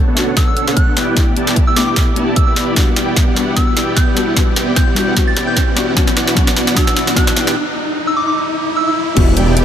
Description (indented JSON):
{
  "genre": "future bass",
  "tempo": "150 BPM",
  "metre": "4/4",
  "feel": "swing 54% on 16ths, half-time",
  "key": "unclear",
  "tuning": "A4 = 439 Hz",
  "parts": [
    { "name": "soft round pluck", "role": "accompaniment", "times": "0.0-9.6 s", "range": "F#3 to F#4", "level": "-22 LUFS", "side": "left 4 dB", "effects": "chorus, sidechain pumping, digital delay" },
    { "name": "dense compressed supersaw", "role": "riff", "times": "0.0-9.6 s", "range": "B3 to B5", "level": "-18 LUFS", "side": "equal", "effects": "sidechain pumping, low-pass filter" },
    { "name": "riser and impact", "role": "sound effects", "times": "0.3-9.6 s", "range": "none", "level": "-23 LUFS", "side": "equal", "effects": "none" },
    { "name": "trap drum kit", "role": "drums", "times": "0.2-9.6 s", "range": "crash cymbal, hi-hat, snare drum", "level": "-19 LUFS", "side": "equal", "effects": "high-pass filter on hats, high-pass filter on snare, high-pass filter on cymbals, high-pass filter on room" },
    { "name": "soft synth bell", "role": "melody", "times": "0.4-8.9 s", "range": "D6 to A6", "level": "-22 LUFS", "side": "right 1 dB", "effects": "chorus, sidechain pumping, digital delay" },
    { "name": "electronic kick drum", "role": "drums", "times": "0.4-9.3 s", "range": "none", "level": "-15 LUFS", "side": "equal", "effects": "none" },
    { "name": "wide detuned saw bass", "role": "bass", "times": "9.2-9.6 s", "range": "E1", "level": "-14 LUFS", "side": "equal", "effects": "chorus, sidechain pumping" }
  ],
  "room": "light reverb",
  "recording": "none",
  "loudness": "-12 LUFS",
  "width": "side -9 dB against mid",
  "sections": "0.0-9.2 A section",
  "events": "build-up 0.0-9.2; drum fill 0.0-7.6; filter sweep on supersaw synth 0.0-9.2; riser 0.3-9.2; break 7.6-9.2; impact 9.2-9.6",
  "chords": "0.0 Bm9; 1.0 G6; 2.8 Gmaj13; 6.0 Bm; 7.4 G6",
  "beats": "0.37 0.77 | 1.17 1.57 1.97 2.37 | 2.77 3.17 3.57 3.97 | 4.37 4.77 5.17 5.57 | 5.97 6.37 6.77 7.17 | 7.57 7.97 8.37 8.77 | 9.17 9.57"
}